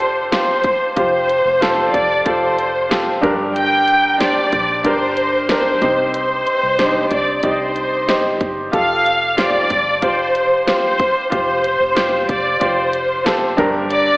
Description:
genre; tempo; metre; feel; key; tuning
piano-driven pop; 93 BPM; 4/4; straight; unclear; A4 = 440 Hz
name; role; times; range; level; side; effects
warm studio violin section; melody; 0.0-14.2 s; C5 to G5; -16 LUFS; equal; none
clear upright piano; accompaniment; 0.0-14.2 s; G2 to Eb5; -19 LUFS; equal; none
vintage muted fingered electric bass; bass; 0.0-14.2 s; F1 to C2; -36 LUFS; equal; none
pop drum kit; drums; 0.0-14.1 s; hi-hat, kick drum, snare drum; -23 LUFS; equal; none
room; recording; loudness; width
wet lush hall reverb, RT60 1.7 s; dreamy mix soaked in reverb, AM radio sound; -14 LUFS; side -23 dB against mid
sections
0.0-14.2 A section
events
none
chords
0.0 Fadd9; 3.2 Gm; 5.8 Cm; 8.7 Fadd9; 13.6 Gm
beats
0.32 | 0.97 1.62 2.26 2.91 | 3.56 4.20 4.85 5.50 | 6.14 6.79 7.44 8.08 | 8.73 9.38 10.02 10.67 | 11.32 11.96 12.61 13.26 | 13.91

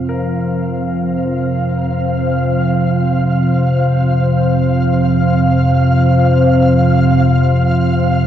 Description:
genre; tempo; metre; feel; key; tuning
dark ambient drone; free time; none; none; unclear; A4 = 440 Hz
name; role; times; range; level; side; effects
deep dark ambient pad; sustained chords; 0.0-8.3 s; F3 to F5; -16 LUFS; right 1 dB; chorus, built-in reverb, shimmer reverb
warm baby grand piano; arpeggios; 0.0-8.3 s; F3 to Bb4; -34 LUFS; left 2 dB; diffuse ambient delay, shimmer reverb
deep rumbling drone; drone; 0.0-8.3 s; F2 to C3; -14 LUFS; equal; built-in reverb
flickering grainy texture; texture; 0.0-8.3 s; F5; -22 LUFS; right 1 dB; built-in reverb, shimmer reverb
room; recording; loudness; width
wet huge ambient reverb, RT60 8.5 s; dark, warm production; -12 LUFS; side -10 dB against mid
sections
0.0-8.3 A section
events
fade-in on synth texture 0.0-8.3; fade-in on grand piano 0.0-8.3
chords
0.0 F5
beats
free time

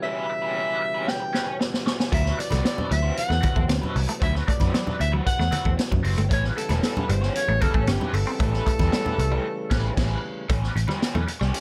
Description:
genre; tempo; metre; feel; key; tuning
funk; 115 BPM; 4/4; straight; A mixolydian; A4 = 440 Hz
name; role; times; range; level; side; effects
breathy alto saxophone; melody; 0.0-9.9 s; G4 to G5; -30 LUFS; equal; none
raw garage guitar; accompaniment; 0.0-11.6 s; C4 to C#5; -35 LUFS; equal; wah, overdrive, tremolo
pedal harmonium; sustained chords; 0.0-10.5 s; B2 to B3; -37 LUFS; equal; none
vintage drum kit; drums; 1.1-11.6 s; crash cymbal, hi-hat, kick drum, snare drum; -28 LUFS; equal; none
semi-hollow electric guitar; riff; 2.1-11.6 s; F#3 to C#4; -35 LUFS; equal; phaser
vintage muted picked electric bass; bass; 2.1-11.5 s; E1 to F#2; -26 LUFS; equal; none
congas; percussion; 2.1-11.6 s; none; -34 LUFS; equal; none
room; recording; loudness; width
studio reverb; none; -24 LUFS; mono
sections
0.0-10.5 A section; 10.5-11.6 B section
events
drum fill 1.1-2.1; band accent 9.4-10.5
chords
0.0 Em6/B; 2.1 D13; 6.3 A9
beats
| 0.03 0.55 1.08 1.60 | 2.12 2.65 3.17 3.69 | 4.22 4.74 5.26 5.79 | 6.31 6.83 7.36 7.88 | 8.40 8.93 9.45 9.97 | 10.49 11.02 11.54

